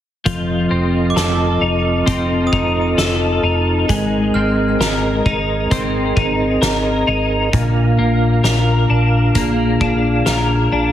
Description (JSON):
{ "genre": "dream pop", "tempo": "66 BPM", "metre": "4/4", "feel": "straight", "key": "unclear", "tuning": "A4 = 439 Hz", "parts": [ { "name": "mellow tonewheel organ", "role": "sustained chords", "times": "0.3-10.9 s", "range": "C4 to F5", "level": "-20 LUFS", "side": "right 2 dB", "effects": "chorus vibrato, slow rotary speaker" }, { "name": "twelve-string electric guitar", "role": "arpeggios", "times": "0.3-10.9 s", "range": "Bb2 to Bb4", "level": "-17 LUFS", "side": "left 2 dB", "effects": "ensemble chorus, ping-pong delay" }, { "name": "hollow-body short-scale fingered electric bass", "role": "bass", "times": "0.3-10.9 s", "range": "F1 to Bb1", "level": "-22 LUFS", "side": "equal", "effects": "none" }, { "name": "loose indie drum kit", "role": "drums", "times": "0.3-10.5 s", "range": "hi-hat, kick drum, snare drum", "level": "-21 LUFS", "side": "equal", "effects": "none" }, { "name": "glockenspiel with brass mallets", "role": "texture", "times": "1.1-7.6 s", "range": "D6 to F6", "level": "-28 LUFS", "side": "right 2 dB", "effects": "stereo widening, ping-pong delay" } ], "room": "light reverb, small room ambience", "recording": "heavily compressed radio sound", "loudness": "-14 LUFS", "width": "side -11 dB against mid", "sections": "0.3-10.9 A section", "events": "none", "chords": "0.3 F7; 3.9 Abadd9; 7.5 Bb" }